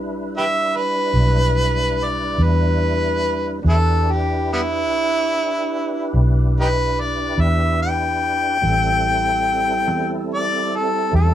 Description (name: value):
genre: slow blues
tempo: 48 BPM (dotted quarters)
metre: 12/8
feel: straight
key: E minor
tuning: A4 = 438 Hz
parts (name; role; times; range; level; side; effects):
- tonewheel organ; sustained chords; 0.0-11.3 s; G3 to B4; -25 LUFS; right 2 dB; slow rotary speaker, overdrive, chorus vibrato
- vintage muted fingered electric bass; bass; 0.0-11.3 s; A1 to E2; -19 LUFS; equal; none
- warm harmonica; melody; 0.4-11.3 s; G3 to G5; -20 LUFS; left 1 dB; overdrive
room: moderate studio reverb, RT60 0.5 s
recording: band playing live in one room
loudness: -17 LUFS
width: side -11 dB against mid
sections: 0.0-11.3 A section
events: none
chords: 0.0 Em7; 8.6 Am7